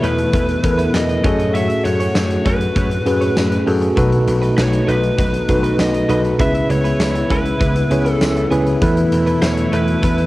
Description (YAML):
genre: 1980s-style pop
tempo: 99 BPM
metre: 4/4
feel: straight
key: F# dorian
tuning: A4 = 439 Hz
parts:
  - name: lead guitar through a small cranked amp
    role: melody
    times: 0.0-10.3 s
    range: B4 to E5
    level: -23 LUFS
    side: left 1 dB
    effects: overdrive, cassette tape, tape echo
  - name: mellow tine electric piano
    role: accompaniment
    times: 0.0-10.3 s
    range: B2 to C#5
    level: -18 LUFS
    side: equal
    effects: medium stereo tremolo
  - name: warm analog pad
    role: sustained chords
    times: 0.0-10.3 s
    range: A2 to F#4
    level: -24 LUFS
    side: equal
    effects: chorus
  - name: direct-recorded clean electric guitar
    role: riff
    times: 0.0-10.2 s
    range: A3 to C#5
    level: -28 LUFS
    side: right 2 dB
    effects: wide subtle chorus, tape echo
  - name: vintage slap bass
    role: bass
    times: 0.0-10.2 s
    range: B1 to F#2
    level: -21 LUFS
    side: equal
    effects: none
  - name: huge arena drum kit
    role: drums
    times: 0.0-10.3 s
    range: hi-hat, kick drum, snare drum, tambourine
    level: -21 LUFS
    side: equal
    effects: cassette tape
room: light reverb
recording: home recording on cassette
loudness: -14 LUFS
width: side -18 dB against mid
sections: 0.0-10.3 A section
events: none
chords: 0.0 Esus4; 1.2 F#madd9; 4.0 B7; 6.4 C#m7; 8.8 Esus4